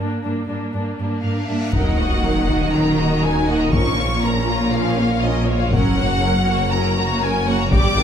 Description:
cinematic, hybrid orchestral and electronic film score; 120 BPM; 4/4; straight; Eb minor; A4 = 440 Hz
warm symphonic viola section; accompaniment; 0.0-8.0 s; F3 to G4; -24 LUFS; right 1 dB
warm symphonic cello section; bass; 0.0-8.0 s; Gb2 to Eb3; -23 LUFS; right 1 dB
reverse cymbal and sub drop; sound effects; 1.4-3.7 s; -26 LUFS; equal
warm symphonic violin section; melody; 1.2-8.0 s; Db5 to D6; -23 LUFS; left 2 dB
warm symphonic violin section; second line; 1.7-8.0 s; Db4 to G5; -25 LUFS; left 2 dB
warm symphonic double bass section; bass; 1.7-8.0 s; Gb1 to Eb2; -25 LUFS; right 2 dB
wide detuned saw bass; bass; 1.7-8.0 s; Eb1 to Bb1; -25 LUFS; equal; chorus
taiko ensemble; drums; 1.7-8.0 s; -21 LUFS; left 1 dB
wet recital hall reverb, RT60 1.5 s; recorded in a church or concert hall, faint mains hum; -16 LUFS; side -8 dB against mid
0.0-1.7 A section; 1.7-8.0 B section
build-up 0.0-1.7; reverse cymbal 1.4-1.7; impact 1.7-3.7
0.0 Gm; 1.7 Ebm; 3.7 Bbm; 5.7 Gb
0.23 0.73 1.23 | 1.73 2.23 2.73 3.23 | 3.73 4.23 4.73 5.23 | 5.73 6.23 6.73 7.23 | 7.73

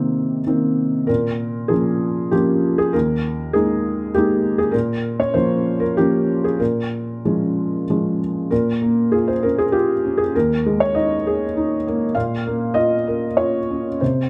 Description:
neoclassical minimalist piano; 93-101 BPM; 3/4; rubato; Bb dorian; A4 = 440 Hz
felt-muted upright piano; solo; 0.0-14.3 s; Eb2 to F5; -20 LUFS; equal
light reverb; dark, warm production; -20 LUFS; mono
0.0-8.5 A section; 8.5-14.3 A section
0.0 Cm7; 1.1 Bbm; 2.9 Ebsus4; 4.7 Bbm; 6.6 Bbm7; 8.5 Bbm; 10.3 Ebsus4; 12.1 Bbm
0.45 | 1.09 1.72 2.33 | 2.94 3.54 4.14 | 4.73 5.34 5.96 | 6.59 7.23 7.87 | 8.50 9.12 9.74 | 10.34 10.95 11.55 | 12.15 12.75 13.37 | 14.00

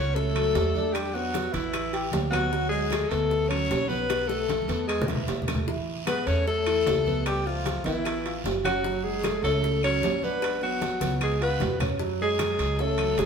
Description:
Afro-Cuban jazz; 152 BPM; 4/4; straight; F# minor; A4 = 440 Hz
breathy alto saxophone; melody; 0.0-13.3 s; E4 to C#5; -28 LUFS; left 1 dB
breathy tenor saxophone; second line; 0.0-13.3 s; E3 to C#4; -32 LUFS; left 5 dB
dark concert grand piano; accompaniment; 0.0-13.3 s; E3 to G5; -33 LUFS; right 3 dB
upright bass; bass; 0.0-13.3 s; F#1 to F#2; -31 LUFS; right 1 dB
bongos; percussion; 0.2-13.3 s; -37 LUFS; left 5 dB
congas; percussion; 0.2-13.3 s; -35 LUFS; right 1 dB
guiro; percussion; 0.2-13.3 s; -42 LUFS; right 3 dB
claves; percussion; 0.4-13.2 s; -41 LUFS; left 6 dB
timbales; percussion; 0.4-13.3 s; -34 LUFS; right 4 dB
wet stone room reverb, RT60 1.5 s; band playing live in one room; -24 LUFS; side -6 dB against mid
0.0-12.0 A section; 12.0-13.3 B section
drum fill 4.1-5.7, 11.0-12.0
0.0 F#m7; 0.9 Esus2; 1.7 Asus2; 2.5 D6; 4.1 B7sus4; 4.9 E5; 5.7 Amaj9; 7.3 C#7alt; 8.8 F#madd9; 10.4 G#m7b5; 11.2 C#7; 12.0 F#madd9
0.16 0.55 | 0.94 1.34 1.73 2.13 | 2.52 2.92 3.31 3.71 | 4.10 4.50 4.89 5.29 | 5.68 6.08 6.47 6.87 | 7.26 7.66 8.05 8.45 | 8.84 9.24 9.63 10.03 | 10.42 10.82 11.21 11.61 | 12.00 12.40 12.79 13.19

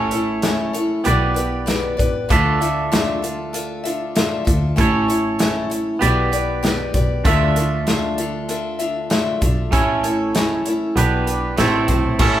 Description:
folk rock and heartland rock; 97 BPM; 4/4; straight; D dorian; A4 = 440 Hz
picked steel-string acoustic guitar; accompaniment; 0.0-12.4 s; A2 to E5; -22 LUFS; left 2 dB
twangy electric guitar; riff; 0.0-12.4 s; A2 to E5; -22 LUFS; right 4 dB
warm double bass; bass; 0.0-12.4 s; A1 to D2; -22 LUFS; equal
natural country drum kit; drums; 0.1-12.3 s; crash cymbal, hi-hat, kick drum, snare drum; -21 LUFS; equal
bright tonewheel organ; sustained chords; 12.2-12.4 s; A4 to C#6; -26 LUFS; equal
moderate large studio reverb, RT60 1.5 s; band playing live in one room; -16 LUFS; side -12 dB against mid
0.0-12.2 A section
0.0 A; 1.1 G/B; 2.3 Dmadd9; 4.8 A; 6.0 G/B; 7.3 Dmadd9; 9.7 A; 11.0 G/B; 11.6 Am
0.44 1.06 1.68 | 2.30 2.92 3.54 4.16 | 4.78 5.40 6.02 6.64 | 7.26 7.88 8.50 9.11 | 9.73 10.35 10.97 11.59 | 12.20

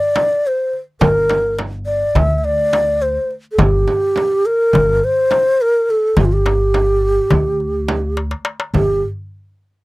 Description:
Turkish makam ensemble; 210 BPM (eighths); 9/8; straight; G makam huseyni; A4 = 440 Hz
breathy mellow low ney; melody; 0.0-9.0 s; F4 to E5-27c; -15 LUFS; equal
darbuka; percussion; 0.2-9.0 s; -20 LUFS; left 2 dB
frame drum; percussion; 0.2-9.0 s; -22 LUFS; right 3 dB
upright bass; bass; 1.0-9.0 s; G1 to D2; -20 LUFS; equal
light reverb; dry, close 1970s-style studio recording; -14 LUFS; side -20 dB against mid
0.0-8.7 A section; 8.7-9.8 B section
drum fill 8.2-8.7
0.15 0.44 0.73 | 1.01 1.30 1.58 1.87 2.16 2.44 2.73 3.02 3.30 | 3.59 3.88 4.16 4.45 4.73 5.02 5.31 5.59 5.88 | 6.17 6.45 6.74 7.03 7.31 7.60 7.88 8.17 8.46 | 8.74

